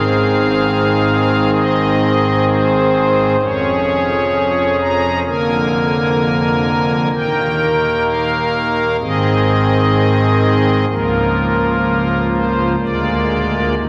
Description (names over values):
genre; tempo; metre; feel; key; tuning
classical, chorale-style piece for pipe organ; 64 BPM; 4/4; rubato; Ab major; A4 = 440 Hz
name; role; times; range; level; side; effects
pipe organ, strings celeste; solo; 0.0-13.9 s; Db1 to Bb5; -15 LUFS; equal; none
room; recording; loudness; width
wet church reverb, RT60 3.2 s; vinyl crackle; -15 LUFS; mono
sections
0.0-13.9 A section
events
none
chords
0.0 Ab; 3.4 Db/F; 5.3 Bb7/F; 7.1 Eb; 9.0 Ab; 10.9 Bbm/Db; 12.8 Bb7/D